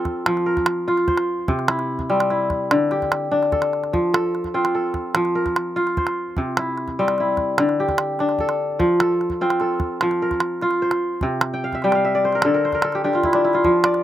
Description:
west african traditional, West African string and xylophone music; 99 BPM (dotted quarters); 12/8; straight; F major; A4 = 440 Hz
kora; arpeggios; 0.0-14.0 s; C3 to G5; -19 LUFS; equal
calabash; percussion; 0.1-14.0 s; -23 LUFS; right 2 dB
light reverb; recorded outdoors, with no room sound; -18 LUFS; side -12 dB against mid
0.0-13.6 A section
kora fill 11.5-13.6
0.0 F; 1.5 C; 2.7 D5; 3.9 F; 6.4 C; 7.6 D5; 8.8 F; 11.2 C5; 12.4 N.C.

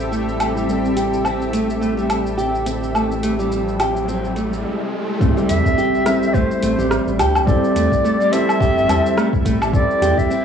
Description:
organic downtempo; 106 BPM; 4/4; swing 57% on 16ths; A minor; A4 = 440 Hz
felt-muted upright piano; accompaniment; 0.0-10.4 s; G3 to A4; -24 LUFS; left 1 dB; sidechain pumping, cassette tape, tape echo
granular cloud pad; sustained chords; 0.0-10.4 s; C4 to E5; -26 LUFS; right 1 dB; built-in reverb, sidechain pumping, cassette tape
nylon-string guitar; arpeggios; 0.0-10.4 s; G3 to G4; -22 LUFS; right 1 dB; low-pass filter, cassette tape, tape echo
round analog bass; bass; 0.0-10.1 s; G1 to E2; -24 LUFS; equal; sidechain pumping
deep house drum kit; drums; 0.0-10.4 s; hi-hat, rim click, shaker, woodblock; -24 LUFS; equal; studio reverb, cassette tape
bronze singing bowl; texture; 0.0-10.4 s; C4 to C5; -30 LUFS; right 6 dB
riser and impact; sound effects; 2.4-7.5 s; -27 LUFS; equal
electronic kick drum; drums; 5.2-10.3 s; -19 LUFS; equal; studio reverb, cassette tape
breathy clarinet; melody; 5.5-10.4 s; C5 to E5; -20 LUFS; equal; cassette tape, analog delay
light reverb, small room ambience; home recording on cassette, studio ambience; -16 LUFS; side -7 dB against mid
0.0-5.2 A section; 5.2-10.4 B section
riser 2.4-5.2; impact 5.2-7.5
0.0 Am7

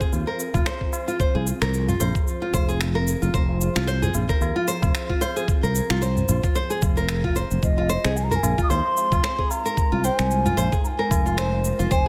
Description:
organic downtempo; 112 BPM; 4/4; swing 56% on 16ths; F minor pentatonic; A4 = 440 Hz
ethereal airy pad; sustained chords; 0.0-12.1 s; F3 to C5; -35 LUFS; equal; ensemble chorus, built-in reverb, phaser, sidechain pumping
nylon-string guitar; arpeggios; 0.0-12.1 s; F4 to C5; -29 LUFS; equal; digital delay
electronic cabasa and finger snaps; drums; 0.0-12.0 s; -33 LUFS; equal
electronic kick drum; drums; 0.0-12.0 s; -26 LUFS; equal
sustaining fretless electric bass; bass; 0.1-12.1 s; F1 to Eb2; -26 LUFS; equal; lush chorus, sidechain pumping
tabla; percussion; 0.1-11.6 s; -34 LUFS; equal
hollow bansuri; melody; 7.6-12.1 s; Eb5 to Eb6; -28 LUFS; equal; delay
light reverb, studio ambience; -22 LUFS; mono
0.0-12.1 A section
0.0 Fm

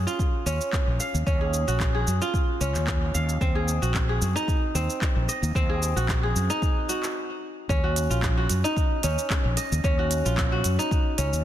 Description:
organic downtempo; 112 BPM; 4/4; swing 54% on 16ths; Eb dorian; A4 = 440 Hz
kora; arpeggios; 0.0-11.4 s; C4 to F5; -28 LUFS; right 1 dB; digital delay
fretless electric bass; bass; 0.0-11.4 s; Bb1 to Gb2; -25 LUFS; equal; ensemble chorus, sidechain pumping
organic electronic drum kit; drums; 0.1-11.4 s; handclaps, hi-hat, shaker; -32 LUFS; right 1 dB
electronic kick drum; drums; 0.2-11.0 s; -25 LUFS; equal
light reverb; dense, heavily limited modern master; -22 LUFS; side -12 dB against mid
0.0-7.7 A section; 7.7-11.4 B section
stop 7.2-7.7
0.0 Gbmaj9; 3.4 Ab9; 7.7 Ebm9

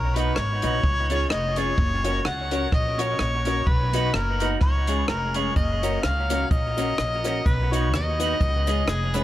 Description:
ska; 127 BPM; 4/4; swing 56% on 8ths; F# major; A4 = 440 Hz
mellow harmonica; melody; 0.0-9.2 s; G#4 to F#5; -27 LUFS; left 1 dB; dub echo
upright bass; bass; 0.0-9.2 s; E#1 to D#2; -26 LUFS; equal
clean electric guitar; accompaniment; 0.2-9.2 s; G#3 to C#5; -30 LUFS; right 3 dB; dub echo
dark upright piano; stabs; 0.2-9.2 s; C#4 to D#5; -31 LUFS; left 4 dB; dub echo
compact cocktail drum kit; drums; 0.2-9.2 s; hi-hat, kick drum, rim click; -25 LUFS; equal
cabasa; percussion; 5.6-9.2 s; -46 LUFS; left 7 dB
light reverb; -21 LUFS; side -14 dB against mid
0.0-9.2 A section
0.0 B; 0.8 C#; 1.8 F#; 3.7 B; 4.6 C#; 5.6 F#; 7.5 B; 8.4 C#

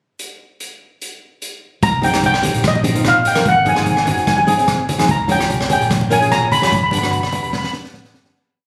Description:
calypso; 147 BPM; 4/4; swing 53% on 16ths; C phrygian; A4 = 440 Hz
street-band drum kit; drums; 0.2-8.3 s; hi-hat, kick drum, rim click, snare drum; -24 LUFS; equal
steel pan; melody; 1.8-7.8 s; Eb5 to B5; -19 LUFS; equal; tape echo
fingered electric bass; bass; 1.8-8.3 s; E1 to Db2; -26 LUFS; equal
congas; percussion; 1.8-8.3 s; -27 LUFS; equal
flamenco guitar; accompaniment; 2.0-8.3 s; B3 to Bb4; -23 LUFS; equal
moderate concert hall reverb, RT60 2.2 s; recorded on a phone in the room, studio ambience; -16 LUFS; mono
0.2-1.8 pickup bar; 1.8-8.3 verse
fade-out 6.7-8.3; drum fill 7.5-8.3
0.2 N.C.; 1.8 Cm7; 3.5 Ab7; 5.1 Db6; 6.7 G

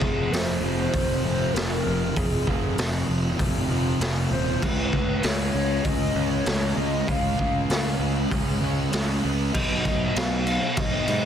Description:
rock, shoegaze and dream pop; 98 BPM; 4/4; straight; A4 = 441 Hz
pure sine lead; melody; 0.0-11.3 s; Ab4 to F5; -30 LUFS; equal; chorus, slapback echo
fuzz guitar; riff; 0.0-11.3 s; F2 to Db4; -27 LUFS; equal; distortion, wide subtle chorus
fuzz picked electric bass; bass; 0.0-11.3 s; Eb1 to Ab2; -27 LUFS; equal; overdrive
raw garage drum kit; drums; 0.0-11.2 s; crash cymbal, hi-hat, kick drum, snare drum; -27 LUFS; equal
studio ambience; dense, heavily limited modern master; -22 LUFS; side -9 dB against mid
0.0-9.5 A section; 9.5-11.3 B section
0.0 Fm; 4.6 Db; 9.5 B

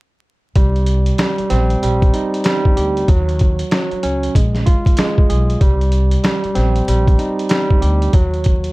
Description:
hip hop, boom-bap hip-hop; 95 BPM; 4/4; swing 63% on 16ths; C phrygian; A4 = 437 Hz
barky tine electric piano; accompaniment; 0.6-8.7 s; Gb3 to Ab4; -19 LUFS; right 1 dB; medium stereo tremolo, high-pass filter, low-pass filter
upright bass; bass; 0.6-8.7 s; Bb1 to Eb2; -16 LUFS; equal
boom bap sampler-style drum kit; drums; 0.6-8.7 s; hi-hat, kick drum, snare drum; -15 LUFS; equal
light reverb; dark, warm production, vinyl crackle; -13 LUFS; side -22 dB against mid
0.6-8.7 A section
0.6 Cm7; 3.1 Ebm7; 4.3 Bb5; 5.6 Cm7; 8.1 Ebm

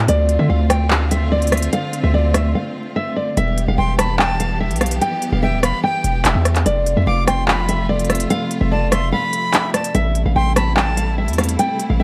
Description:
hip hop, drill; 146 BPM; 4/4; half-time; A minor; A4 = 443 Hz
nylon-string guitar; melody; 0.0-12.0 s; D5 to A5; -23 LUFS; equal; low-pass filter, digital delay
clear symphonic string section; sustained chords; 0.0-12.0 s; C3 to G4; -28 LUFS; equal
hard-hitting 808-style bass; bass; 0.0-12.0 s; D1 to D3; -21 LUFS; equal
drill drum kit; drums; 0.1-11.9 s; handclaps, hi-hat, rim click; -22 LUFS; equal
breathy bright jazz flute; second line; 3.8-12.0 s; G5 to D6; -28 LUFS; equal; digital delay
light reverb, studio reverb; vinyl crackle; -18 LUFS; mono
0.0-9.9 A section; 9.9-12.0 A section
break 2.5-3.4; kick muted 9.1-9.9
0.1 Dm7; 3.4 Em; 6.7 F; 9.9 Am7

